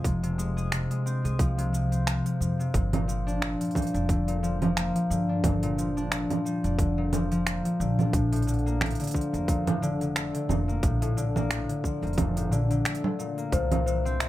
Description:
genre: folktronica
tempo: 89 BPM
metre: 4/4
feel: swing 56% on 16ths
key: unclear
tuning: A4 = 438 Hz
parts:
  - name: concert harp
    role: arpeggios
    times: 0.0-14.3 s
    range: A2 to Ab4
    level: -27 LUFS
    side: left 1 dB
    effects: tape echo
  - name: upright bass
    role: bass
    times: 0.0-14.3 s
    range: F1 to G2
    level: -29 LUFS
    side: equal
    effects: none
  - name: electronic kick drum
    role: drums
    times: 0.0-13.7 s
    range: none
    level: -27 LUFS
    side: equal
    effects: overdrive
  - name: organic electronic drum kit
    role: drums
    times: 0.1-14.3 s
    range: congas, finger snaps, hi-hat, shaker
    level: -31 LUFS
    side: right 4 dB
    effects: overdrive
  - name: celesta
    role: second line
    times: 13.5-14.3 s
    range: C5 to E5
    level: -30 LUFS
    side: left 6 dB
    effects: none
room: light reverb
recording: none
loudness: -24 LUFS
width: side -15 dB against mid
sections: 0.0-14.3 A section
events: none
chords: 0.0 Fm; 2.7 Gm7; 8.1 Bbmaj7; 13.5 C7

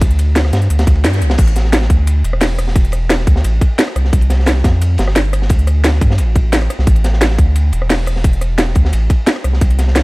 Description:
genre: liquid drum and bass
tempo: 175 BPM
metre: 4/4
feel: straight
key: A minor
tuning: A4 = 440 Hz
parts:
  - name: saturated sub bass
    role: bass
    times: 0.0-10.0 s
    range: E1 to G2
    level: -13 LUFS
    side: equal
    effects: none
  - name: crunchy breakbeat drum kit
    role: drums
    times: 0.0-10.0 s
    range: hi-hat, ride cymbal, snare drum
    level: -23 LUFS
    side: equal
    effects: high-pass filter on cymbals, high-pass filter on hats, high-pass filter on snare, high-pass filter on room
  - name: drum and bass drum kit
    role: drums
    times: 0.0-10.0 s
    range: crash cymbal, hi-hat, rim click, snare drum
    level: -18 LUFS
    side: equal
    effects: none
  - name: electronic kick drum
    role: drums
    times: 0.0-9.7 s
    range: none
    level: -12 LUFS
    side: equal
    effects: none
room: little or no reverb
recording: none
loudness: -11 LUFS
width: side -23 dB against mid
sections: 0.0-1.4 A section; 1.4-10.0 A section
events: drop 0.0-1.4, 1.4-10.0; kick drops out 1.0-1.4; band accent 1.0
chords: none

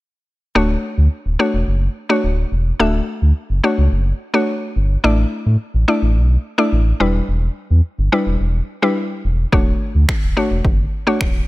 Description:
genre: dance-pop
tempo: 107 BPM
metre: 4/4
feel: straight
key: D major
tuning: A4 = 440 Hz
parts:
  - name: mallet-like synth pluck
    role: accompaniment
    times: 0.6-11.5 s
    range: G3 to E5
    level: -18 LUFS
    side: left 1 dB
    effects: chorus, sidechain pumping
  - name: sub bass with octave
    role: bass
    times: 0.6-11.4 s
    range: D1 to A2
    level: -15 LUFS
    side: equal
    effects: sidechain pumping
  - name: deep house drum kit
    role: drums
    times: 9.5-11.3 s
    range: finger snaps, kick drum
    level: -18 LUFS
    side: equal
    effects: none
room: digital ambience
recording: none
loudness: -15 LUFS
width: side -18 dB against mid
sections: 0.6-11.5 A section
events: none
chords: 0.6 Dmaj7; 5.0 Asus4; 7.0 Em7; 9.5 Dmaj7

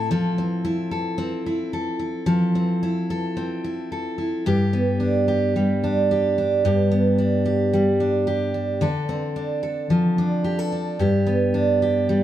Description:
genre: pop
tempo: 110 BPM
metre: 4/4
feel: straight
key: G mixolydian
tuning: A4 = 441 Hz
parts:
  - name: picked steel-string acoustic guitar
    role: solo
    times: 0.0-12.2 s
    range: G2 to A4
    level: -19 LUFS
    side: equal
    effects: none
room: moderate stone room reverb, RT60 1.1 s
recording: band playing live in one room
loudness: -20 LUFS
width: side -12 dB against mid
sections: 0.0-12.2 A section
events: none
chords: 0.1 Fmaj7; 4.5 G; 8.8 Dm7; 11.0 G

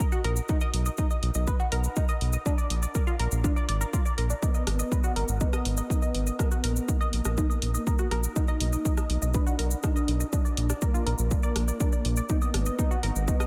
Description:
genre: melodic techno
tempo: 122 BPM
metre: 4/4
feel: straight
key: unclear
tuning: A4 = 440 Hz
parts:
  - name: tight sequenced synth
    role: arpeggios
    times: 0.0-13.5 s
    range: D4 to D#5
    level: -36 LUFS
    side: equal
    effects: chorus, phaser, vintage 12-bit sampler grit, sidechain pumping, tape echo
  - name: electronic kick drum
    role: drums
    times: 0.0-13.4 s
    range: none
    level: -28 LUFS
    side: equal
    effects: overdrive
  - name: cabasa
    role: percussion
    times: 0.1-13.5 s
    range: none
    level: -40 LUFS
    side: equal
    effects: none
  - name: round analog bass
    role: bass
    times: 0.2-13.3 s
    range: Ab1 to B1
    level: -29 LUFS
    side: equal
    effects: sidechain pumping
  - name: punchy analog drum machine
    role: drums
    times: 0.2-13.5 s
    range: hi-hat, rim click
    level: -37 LUFS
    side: equal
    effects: sidechain pumping on hats
  - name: expressive portamento lead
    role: melody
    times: 4.4-13.5 s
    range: Bb3 to D#4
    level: -36 LUFS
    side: equal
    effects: ensemble chorus, sidechain pumping, analog delay
room: light reverb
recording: none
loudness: -27 LUFS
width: mono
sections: 0.0-13.5 A section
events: none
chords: 0.5 B; 2.5 Bb; 4.4 Abm; 6.4 Ebm/Bb; 8.4 B; 10.3 Bb; 12.3 Abm

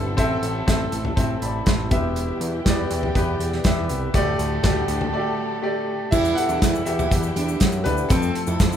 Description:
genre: piano-driven pop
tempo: 121 BPM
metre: 4/4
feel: straight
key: unclear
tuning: A4 = 442 Hz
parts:
  - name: clear concert grand piano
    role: accompaniment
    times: 0.0-8.8 s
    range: A2 to C6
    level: -25 LUFS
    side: left 1 dB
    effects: none
  - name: warm studio string section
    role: sustained chords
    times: 0.0-8.8 s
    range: B2 to A4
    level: -30 LUFS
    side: right 1 dB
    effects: none
  - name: fat analog bass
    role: bass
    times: 0.0-8.8 s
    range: E1 to F#2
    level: -26 LUFS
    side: equal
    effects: none
  - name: natural country drum kit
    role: drums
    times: 0.2-8.7 s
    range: crash cymbal, hi-hat, kick drum, snare drum, toms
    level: -22 LUFS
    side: equal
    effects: none
  - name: picked steel-string acoustic guitar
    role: riff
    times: 6.1-8.8 s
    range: C4 to E4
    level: -25 LUFS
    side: right 3 dB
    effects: none
  - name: egg shaker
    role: percussion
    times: 6.1-8.8 s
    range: none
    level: -38 LUFS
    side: left 9 dB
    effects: none
room: light reverb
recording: band playing live in one room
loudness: -19 LUFS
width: side -9 dB against mid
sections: 0.0-6.1 A section; 6.1-8.8 B section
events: break 5.1-6.1; grand piano solo 6.1-8.8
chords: 0.0 Am; 1.9 Em; 4.1 Dsus4; 6.1 Em; 8.1 F

